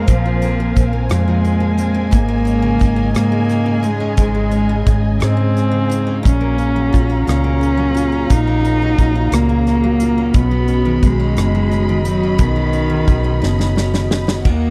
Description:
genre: six-eight pop ballad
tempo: 58 BPM (dotted quarters)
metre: 6/8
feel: straight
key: unclear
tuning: A4 = 441 Hz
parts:
  - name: warm cello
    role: melody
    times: 0.0-14.7 s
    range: D#3 to Eb4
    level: -21 LUFS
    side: equal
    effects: none
  - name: picked steel-string acoustic guitar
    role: accompaniment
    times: 0.0-14.7 s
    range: Ab2 to F4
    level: -23 LUFS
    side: equal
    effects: none
  - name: dark studio string section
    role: sustained chords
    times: 0.0-14.7 s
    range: Db3 to B5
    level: -28 LUFS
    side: equal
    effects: none
  - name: vintage muted fingered electric bass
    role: bass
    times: 0.0-14.7 s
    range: F#1 to Ab2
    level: -20 LUFS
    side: equal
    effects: none
  - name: modern studio drum kit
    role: drums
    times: 0.1-14.6 s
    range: crash cymbal, hi-hat, kick drum, rim click, snare drum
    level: -18 LUFS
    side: equal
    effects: none
room: small room ambience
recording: dry, close 1970s-style studio recording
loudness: -16 LUFS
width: mono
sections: 0.0-14.5 A section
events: drum fill 13.4-14.5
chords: 0.0 Bbsus2; 2.1 Dbsus2/Ab; 6.2 Gbmaj7/Bb; 10.3 Badd9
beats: | 0.08 1.11 | 2.13 3.16 | 4.18 5.21 | 6.25 7.28 | 8.30 9.33 | 10.35 11.37 | 12.40 13.43 | 14.46

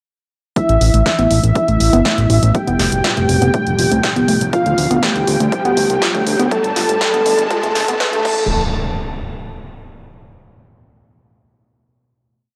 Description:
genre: melodic techno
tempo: 121 BPM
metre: 4/4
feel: straight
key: unclear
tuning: A4 = 440 Hz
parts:
  - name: unison lead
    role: melody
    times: 0.6-8.4 s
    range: E4 to A4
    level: -22 LUFS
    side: equal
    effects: sidechain pumping, analog delay
  - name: airy dreamy lead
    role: second line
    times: 0.6-8.4 s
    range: E5 to A5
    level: -23 LUFS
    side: equal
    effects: chorus, vintage 12-bit sampler grit, sidechain pumping, analog delay
  - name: woody wave-folded pluck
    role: arpeggios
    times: 0.6-8.5 s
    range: A3 to B4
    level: -23 LUFS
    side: equal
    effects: chorus, sidechain pumping, analog delay
  - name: analog drone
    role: drone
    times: 2.2-8.6 s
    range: A2 to B2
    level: -32 LUFS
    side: equal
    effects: none
  - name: electronic kick drum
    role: drums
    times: 0.6-8.4 s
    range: none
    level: -24 LUFS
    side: equal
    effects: overdrive, high-pass filter on kick
  - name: punchy analog drum machine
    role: drums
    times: 0.6-8.4 s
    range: crash cymbal, hi-hat, snare drum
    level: -24 LUFS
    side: equal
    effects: overdrive, high-pass filter on hats, high-pass filter on snare, high-pass filter on cymbals
  - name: riser and impact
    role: sound effects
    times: 3.5-10.2 s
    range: none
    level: -28 LUFS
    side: equal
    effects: none
  - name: fat analog bass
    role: bass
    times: 0.7-8.5 s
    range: F1 to G2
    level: -20 LUFS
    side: equal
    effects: tube saturation, sidechain pumping
room: moderate lush hall reverb, RT60 2.2 s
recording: dry, gritty hardware recording, cassette tape, high-pass filter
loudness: -15 LUFS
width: mono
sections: 0.6-8.5 build; 8.5-10.5 final hit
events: build-up 0.6-8.5; filter sweep on synth pluck 0.6-8.5; filter sweep on analog synth lead 0.6-8.5; filter sweep on digital synth lead 0.6-8.5; filter sweep 0.6-8.5; riser 3.5-8.5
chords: 0.6 Asus2; 2.5 F; 4.5 Dm; 6.5 G; 8.2 Asus2; 8.5 N.C.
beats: | 0.56 1.06 1.56 2.05 | 2.55 3.04 3.54 4.04 | 4.53 5.03 5.52 6.02 | 6.51 7.01 7.51 8.00 | 8.50 8.99 9.49 9.99

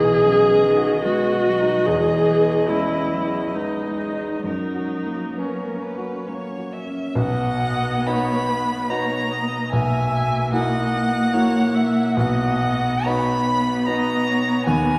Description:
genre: classical, slow romantic movement for piano quartet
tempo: 64-76 BPM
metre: 3/4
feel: rubato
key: B major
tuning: A4 = 438 Hz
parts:
  - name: rich violin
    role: melody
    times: 0.0-15.0 s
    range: A#4 to B5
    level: -28 LUFS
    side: equal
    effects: none
  - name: warm cello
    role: second line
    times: 0.0-15.0 s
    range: D#3 to B3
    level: -27 LUFS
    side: equal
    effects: none
  - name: warm grand piano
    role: accompaniment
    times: 0.0-15.0 s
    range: B1 to G#4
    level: -27 LUFS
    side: equal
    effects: none
  - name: warm viola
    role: accompaniment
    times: 0.0-15.0 s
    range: C#4 to E5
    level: -26 LUFS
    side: equal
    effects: none
room: wet concert hall reverb, RT60 2.3 s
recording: heard from further back in the room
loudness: -21 LUFS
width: mono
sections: 0.0-7.2 A section; 7.2-15.0 B section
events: none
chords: 0.0 B; 1.9 Emaj7; 4.4 F#; 7.2 B; 9.7 F#7/B; 12.2 B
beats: 0.24 1.05 | 1.87 2.69 3.54 | 4.45 5.37 6.27 | 7.17 8.06 8.90 | 9.72 10.52 11.33 | 12.16 13.06 13.87 | 14.67

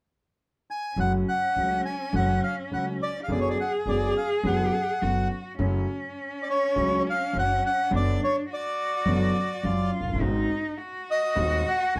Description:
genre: tango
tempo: 104 BPM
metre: 4/4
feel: rubato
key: F# harmonic minor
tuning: A4 = 441 Hz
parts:
  - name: bandoneon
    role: melody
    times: 0.7-12.0 s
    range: C#5 to G#5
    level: -29 LUFS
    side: equal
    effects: none
  - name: rich cello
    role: second line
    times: 1.0-12.0 s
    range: C#4 to G#4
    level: -34 LUFS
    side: equal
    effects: none
  - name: warm concert grand piano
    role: accompaniment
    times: 1.0-12.0 s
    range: D#1 to F#4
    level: -31 LUFS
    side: equal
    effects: none
  - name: upright bass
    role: bass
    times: 1.0-12.0 s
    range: E#1 to D#2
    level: -32 LUFS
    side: equal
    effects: none
room: wet studio ambience, RT60 0.5 s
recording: band playing live in one room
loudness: -26 LUFS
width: mono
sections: 1.0-5.6 A section; 5.6-12.0 B section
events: none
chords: 0.0 N.C.; 1.0 F#m; 3.3 Bm/F#; 5.6 F#m; 7.9 Bm/F#; 10.2 G#7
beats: 0.40 | 0.97 1.55 2.13 2.71 | 3.28 3.85 4.43 5.01 | 5.59 6.18 6.76 7.34 | 7.92 8.49 9.06 9.64 | 10.21 10.79 11.37 11.94

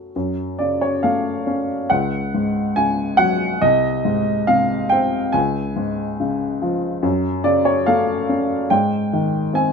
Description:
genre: classical, lyrical solo piano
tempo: 70 BPM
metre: 4/4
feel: rubato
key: F# harmonic minor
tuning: A4 = 441 Hz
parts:
  - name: warm upright piano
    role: solo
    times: 0.0-9.7 s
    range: B#1 to G#5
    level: -17 LUFS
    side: equal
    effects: none
room: moderate studio reverb, RT60 0.9 s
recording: minimal, uncompressed stereo recording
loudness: -17 LUFS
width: side -5 dB against mid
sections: 0.1-9.7 A section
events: none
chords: 0.1 F#m; 1.9 C#sus4; 3.6 G#/B#; 5.3 C#; 7.0 F#m; 8.7 G#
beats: | 0.15 1.03 1.91 2.77 | 3.62 4.49 5.35 6.20 | 7.04 7.87 8.72 9.55

